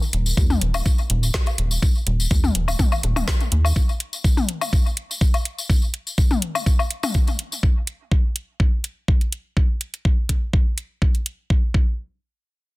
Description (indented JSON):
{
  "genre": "minimal techno",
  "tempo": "124 BPM",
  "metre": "4/4",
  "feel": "swing 53% on 16ths",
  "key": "unclear",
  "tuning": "A4 = 440 Hz",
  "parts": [
    { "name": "tambourine", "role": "percussion", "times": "0.0-7.6 s", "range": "none", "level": "-30 LUFS", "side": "left 3 dB", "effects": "none" },
    { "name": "rubbery square bass", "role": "bass", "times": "0.1-3.7 s", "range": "Eb1 to Eb2", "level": "-20 LUFS", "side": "equal", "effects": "sidechain pumping" },
    { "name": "garage drum kit", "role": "drums", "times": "0.1-11.4 s", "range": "hi-hat, snare drum", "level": "-26 LUFS", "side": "right 1 dB", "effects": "none" },
    { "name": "electronic kick drum", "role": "drums", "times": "0.4-11.9 s", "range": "none", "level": "-18 LUFS", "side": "equal", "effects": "none" },
    { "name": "electronic toms and woodblock", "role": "percussion", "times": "0.5-7.1 s", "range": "none", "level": "-26 LUFS", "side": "left 4 dB", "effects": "ping-pong delay" }
  ],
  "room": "little or no reverb",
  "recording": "dense, heavily limited modern master",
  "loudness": "-19 LUFS",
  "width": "side -21 dB against mid",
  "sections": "0.0-11.5 A section; 11.5-12.8 B section",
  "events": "none",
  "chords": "none"
}